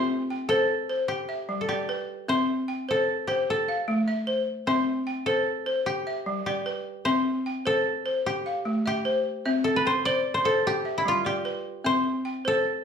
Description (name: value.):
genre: west african traditional, West African string and xylophone music.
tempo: 100 BPM (dotted quarters).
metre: 12/8.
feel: straight.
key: C major.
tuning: A4 = 440 Hz.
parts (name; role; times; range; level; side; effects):
koto; melody; 0.0-12.8 s; E4 to D5; -27 LUFS; equal; none.
balafon; arpeggios; 0.0-12.8 s; G3 to G5; -26 LUFS; left 2 dB; none.
room: wet large studio reverb, RT60 0.8 s.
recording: band playing live in one room.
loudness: -24 LUFS.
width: side -7 dB against mid.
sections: 0.0-12.8 A section.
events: none.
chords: 0.0 C; 1.1 G; 2.3 C; 3.5 Am; 4.7 C; 5.9 G; 7.1 C; 8.3 Am; 9.5 C; 10.7 G; 11.8 C.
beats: 0.50 1.10 1.69 | 2.29 2.88 3.48 4.08 | 4.67 5.27 5.87 6.46 | 7.06 7.66 8.26 8.85 | 9.45 10.05 10.65 11.25 | 11.85 12.45.